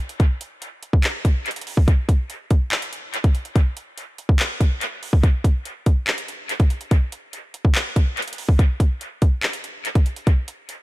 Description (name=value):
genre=hip hop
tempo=143 BPM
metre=4/4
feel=half-time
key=none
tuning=none
part: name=trap drum kit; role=drums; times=0.1-10.8 s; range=handclaps, hi-hat, kick drum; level=-18 LUFS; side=equal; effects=dub echo
room=little or no reverb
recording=echo-heavy mix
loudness=-18 LUFS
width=side -18 dB against mid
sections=0.0-5.2 A section; 5.2-10.8 B section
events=none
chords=none